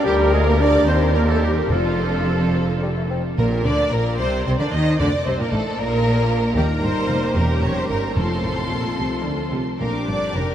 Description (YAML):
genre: quick classical-period movement for symphony orchestra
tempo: 71-78 BPM (dotted quarters)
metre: 6/8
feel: rubato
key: Bb major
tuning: A4 = 438 Hz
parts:
  - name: large flute ensemble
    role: second line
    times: 0.0-2.5 s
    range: none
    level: barely audible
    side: none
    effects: none
  - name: rich studio violin section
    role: second line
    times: 0.0-10.5 s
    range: F4 to Eb5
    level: -26 LUFS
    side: equal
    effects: none
  - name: clear studio viola section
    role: accompaniment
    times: 0.0-10.5 s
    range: A3 to Bb4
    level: -29 LUFS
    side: left 1 dB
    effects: none
  - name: warm French horn section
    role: sustained chords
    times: 0.0-10.5 s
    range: F3 to Eb4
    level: -24 LUFS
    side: left 1 dB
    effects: none
  - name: rich studio violin section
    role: melody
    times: 0.1-10.5 s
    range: A4 to D6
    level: -30 LUFS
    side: right 2 dB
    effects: none
  - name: clear clarinet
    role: second line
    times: 0.1-2.5 s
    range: none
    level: barely audible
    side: none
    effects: none
  - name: clear oboe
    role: second line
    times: 0.1-2.5 s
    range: F4 to D5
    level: -32 LUFS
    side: right 4 dB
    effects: none
  - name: bright studio cello section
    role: bass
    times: 0.1-10.5 s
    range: D2 to Eb3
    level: -25 LUFS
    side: right 1 dB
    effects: none
  - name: rich studio double bass section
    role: bass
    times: 0.1-10.5 s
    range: E1 to Eb2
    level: -23 LUFS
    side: equal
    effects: none
  - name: timpani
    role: percussion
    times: 1.7-10.5 s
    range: F2 to Bb2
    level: -28 LUFS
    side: right 1 dB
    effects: none
  - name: mellow bassoon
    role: accompaniment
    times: 2.5-3.2 s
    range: F3 to C4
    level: -36 LUFS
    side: left 5 dB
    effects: none
room: wet huge ambient reverb, RT60 7.5 s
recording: in a vast, echoing space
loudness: -17 LUFS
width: side -10 dB against mid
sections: 0.0-3.4 A section; 3.4-10.5 B section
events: none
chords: 0.0 Bb/D; 0.9 Eb; 1.7 F; 3.4 Bb; 4.2 Cm; 5.0 Bbmaj9; 5.8 N.C.; 6.6 Eb; 7.4 Edim7; 8.2 F; 9.8 Bb